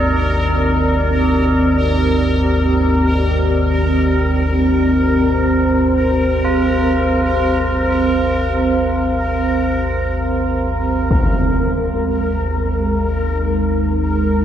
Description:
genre	dark ambient drone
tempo	free time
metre	none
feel	none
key	unclear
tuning	A4 = 436 Hz
part	deep dark ambient pad	sustained chords	0.0-14.4 s	G#3 to D5	-18 LUFS	right 1 dB	chorus, built-in reverb
part	tubular bells	arpeggios	0.0-14.4 s	Eb4 to E#4	-26 LUFS	right 1 dB	tape echo
part	deep rumbling drone	drone	0.0-14.4 s	G#1 to D#2	-19 LUFS	equal	built-in reverb, wide subtle chorus
part	bubbling stepped-filter texture	texture	0.0-14.4 s	A#4	-22 LUFS	equal	chorus, built-in reverb
part	impact	percussion	11.1-11.3 s	none	-21 LUFS	left 1 dB	low-pass filter on sfx
room	wet huge ambient reverb, RT60 9.3 s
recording	dreamy mix soaked in reverb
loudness	-14 LUFS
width	side -10 dB against mid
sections	0.0-11.1 A section; 11.1-14.4 B section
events	none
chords	0.0 Cm7; 11.1 G#5

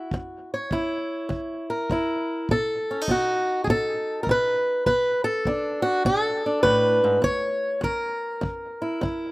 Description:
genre	acoustic country blues, solo or duo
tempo	101 BPM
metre	4/4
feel	swing 66% on 8ths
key	unclear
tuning	A4 = 440 Hz
part	fingerpicked swing-style acoustic guitar	melody	0.0-9.3 s	F#2 to C#5	-22 LUFS	equal	none
part	kick drum	drums	0.1-9.2 s	none	-30 LUFS	equal	none
room	little or no reverb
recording	recorded outdoors, with no room sound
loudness	-22 LUFS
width	side -20 dB against mid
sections	0.0-9.3 A section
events	none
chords	0.0 F#7; 2.5 B7; 4.9 Bm7; 7.2 F#7

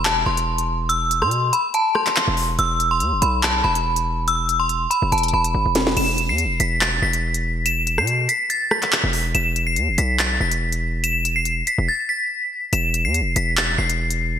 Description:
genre	hip hop, drill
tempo	142 BPM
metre	4/4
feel	half-time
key	unclear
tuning	A4 = 441 Hz
part	metallic FM bell	melody	0.0-14.4 s	A5 to E7	-20 LUFS	left 1 dB	chorus, ping-pong delay
part	distorted 808-style bass	bass	0.0-14.4 s	E1 to B2	-23 LUFS	equal	distortion
part	drill drum kit	drums	0.1-14.2 s	crash cymbal, handclaps, hi-hat, rim click, snare drum	-23 LUFS	left 1 dB	gated reverb
room	moderate lush hall reverb, RT60 1.7 s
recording	bright 1980s-style digital production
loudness	-18 LUFS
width	side -9 dB against mid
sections	0.0-6.0 A section; 6.0-14.4 B section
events	drum fill 5.1-6.0; break 11.9-12.7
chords	0.0 Am/E (rootless); 2.6 E5

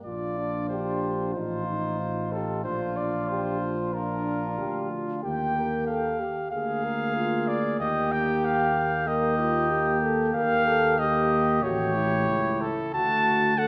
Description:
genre	classical, brass quintet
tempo	93 BPM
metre	4/4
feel	rubato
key	Bb major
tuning	A4 = 440 Hz
part	warm cornet	melody	0.0-13.7 s	A4 to A5	-30 LUFS	equal	none
part	warm French horn	accompaniment	0.0-13.7 s	D4 to Bb4	-33 LUFS	equal	none
part	warm trombone	accompaniment	0.0-13.7 s	A3 to Eb4	-36 LUFS	equal	none
part	dark tuba	bass	0.0-13.7 s	A1 to Eb2	-34 LUFS	equal	none
part	mellow trumpet	second line	0.1-13.7 s	F4 to Ab4	-34 LUFS	equal	none
room	wet concert hall reverb, RT60 2.3 s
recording	none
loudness	-26 LUFS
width	mono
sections	0.0-13.7 A section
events	none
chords	0.0 Bb; 1.3 F7/A; 2.6 Bb; 5.2 Eb; 6.5 Bb7/D; 7.8 Eb; 11.6 A7; 12.9 D

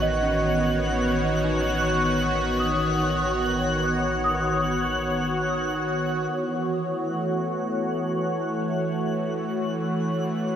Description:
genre	ambient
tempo	free time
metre	none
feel	none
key	A lydian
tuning	A4 = 440 Hz
part	warm analog pad	sustained chords	0.0-10.6 s	D#3 to C#5	-24 LUFS	equal	chorus
part	large celesta	arpeggios	0.0-6.3 s	C#4 to D#6	-29 LUFS	equal	lush chorus, tape echo
part	warm sub bass	bass	0.0-6.3 s	A1	-32 LUFS	equal	none
part	twinkling granular texture	texture	0.0-10.6 s	F#6	-32 LUFS	right 1 dB	built-in reverb
room	wet lush hall reverb, RT60 2.6 s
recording	dreamy mix soaked in reverb, cassette tape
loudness	-22 LUFS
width	side -9 dB against mid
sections	0.0-6.3 A section; 6.3-10.6 B section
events	fade-in on synth texture 6.3-10.6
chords	0.0 A6

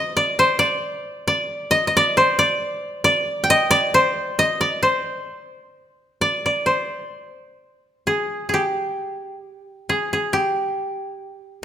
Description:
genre	japanese traditional, Japanese chamber music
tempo	67 BPM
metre	2/4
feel	rubato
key	C hirajoshi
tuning	A4 = 440 Hz
part	koto	solo	0.0-11.6 s	G4 to G5	-18 LUFS	equal	none
room	moderate recital hall reverb, RT60 1.6 s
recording	minimal, uncompressed stereo recording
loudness	-18 LUFS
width	side -10 dB against mid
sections	0.0-6.7 A section; 6.7-11.6 B section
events	none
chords	none

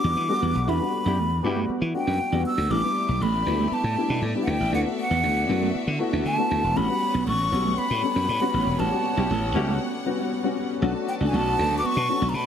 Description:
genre	pop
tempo	118 BPM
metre	4/4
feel	straight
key	unclear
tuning	A4 = 441 Hz
part	breathy hollow jazz flute	melody	0.0-12.5 s	F#5 to E6	-26 LUFS	equal	none
part	dark baby grand piano	accompaniment	0.0-12.5 s	G3 to A4	-28 LUFS	left 4 dB	analog chorus
part	mellow electric guitar	riff	0.0-12.4 s	A3 to E4	-32 LUFS	right 9 dB	wide subtle chorus
part	slap bass	bass	0.0-12.4 s	E1 to E3	-25 LUFS	equal	none
part	mellow horn section	second line	1.1-1.6, 9.2-12.5 s	F#3 to G4	-33 LUFS	left 3 dB	none
part	clear studio string section	sustained chords	2.7-12.5 s	G3 to A5	-35 LUFS	left 1 dB	none
room	light reverb, small room reverb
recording	lossy compression artefacts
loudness	-22 LUFS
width	side -8 dB against mid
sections	0.0-10.8 A section; 10.8-12.5 B section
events	band accent 0.7-2.7, 8.8-10.8; break 9.8-10.8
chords	0.0 Em7; 2.7 A7sus4; 4.7 D69; 6.8 A13; 10.8 Bm7

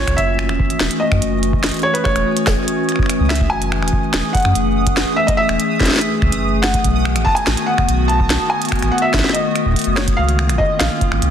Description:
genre	IDM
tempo	144 BPM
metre	4/4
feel	straight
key	F# dorian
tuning	A4 = 437 Hz
part	felt-muted upright piano	melody	0.0-11.3 s	B4 to A5	-20 LUFS	equal	tape echo
part	warbly tape-like pad	sustained chords	0.0-11.3 s	D#3 to G#4	-20 LUFS	left 2 dB	chorus, built-in reverb
part	warm sub bass	bass	0.0-11.3 s	E1 to F#2	-19 LUFS	equal	none
part	electronic kick drum	drums	0.1-11.1 s	none	-20 LUFS	equal	studio reverb
part	glitchy drum kit	drums	0.1-11.3 s	finger snaps, hi-hat, snare drum	-21 LUFS	equal	studio reverb, soft clipping on snare, digital delay
part	pulsing gated texture	texture	0.7-11.3 s	D#6	-28 LUFS	right 5 dB	chorus, built-in reverb
room	light reverb, digital ambience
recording	dense, heavily limited modern master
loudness	-14 LUFS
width	side -9 dB against mid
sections	0.0-11.3 A section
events	none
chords	0.2 F#m7; 6.8 B7; 10.2 C#69

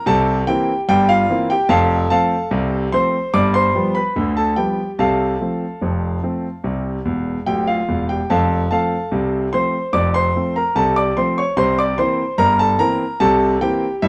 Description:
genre	ragtime piano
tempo	73 BPM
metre	2/4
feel	straight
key	F major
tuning	A4 = 440 Hz
part	clear concert grand piano	solo	0.0-14.1 s	D1 to D6	-18 LUFS	equal	none
room	moderate studio reverb, RT60 0.8 s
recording	band playing live in one room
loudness	-18 LUFS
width	mono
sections	0.0-14.1 A section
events	grand piano fill 7.1-8.3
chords	0.0 C7; 1.7 F; 3.3 G7; 5.0 F/C; 6.6 C; 8.3 F; 11.6 C7

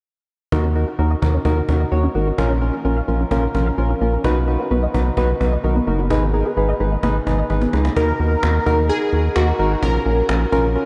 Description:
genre	synth-pop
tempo	129 BPM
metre	4/4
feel	straight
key	Eb minor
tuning	A4 = 438 Hz
part	soft electric-piano-like synth keys	accompaniment	0.5-10.9 s	Db4 to Db5	-24 LUFS	equal	chorus
part	unison pluck	arpeggios	0.5-7.9 s	Eb3 to F5	-29 LUFS	equal	ensemble chorus, analog delay
part	rubbery square bass	bass	0.5-10.8 s	F#1 to Eb2	-21 LUFS	equal	none
part	cajon	drums	0.5-10.8 s	none	-31 LUFS	equal	none
part	funky polysynth comp	melody	8.0-10.3 s	Gb4 to Bb4	-24 LUFS	equal	chorus, analog delay
room	wet huge ambient reverb, RT60 8.8 s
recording	dreamy mix soaked in reverb, nothing above 10.9 kHz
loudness	-19 LUFS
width	mono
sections	0.5-8.0 A section; 8.0-10.9 B section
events	drum fill 7.5-8.0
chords	0.5 Ebm7; 2.4 Bbm; 4.2 Bmaj7; 6.1 Abmadd9; 8.0 Ebm; 9.8 Bbm

